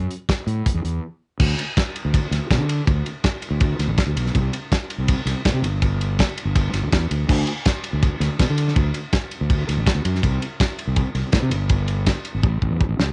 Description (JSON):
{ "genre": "indie rock", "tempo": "163 BPM", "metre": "4/4", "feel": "straight", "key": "D major", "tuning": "A4 = 439 Hz", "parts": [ { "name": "fuzz fingered electric bass", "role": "bass", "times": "0.0-13.1 s", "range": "G1 to D3", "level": "-24 LUFS", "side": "equal", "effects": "overdrive" }, { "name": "loose indie drum kit", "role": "drums", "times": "0.1-13.1 s", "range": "crash cymbal, hi-hat, kick drum, ride cymbal, snare drum", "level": "-23 LUFS", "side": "equal", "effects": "cassette tape" } ], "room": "little or no reverb", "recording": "home recording on cassette, nothing above 10.4 kHz", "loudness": "-21 LUFS", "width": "mono", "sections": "0.0-1.4 A section; 1.4-13.1 B section", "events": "break 1.0-1.4; drum fill 12.4-13.1", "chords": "none" }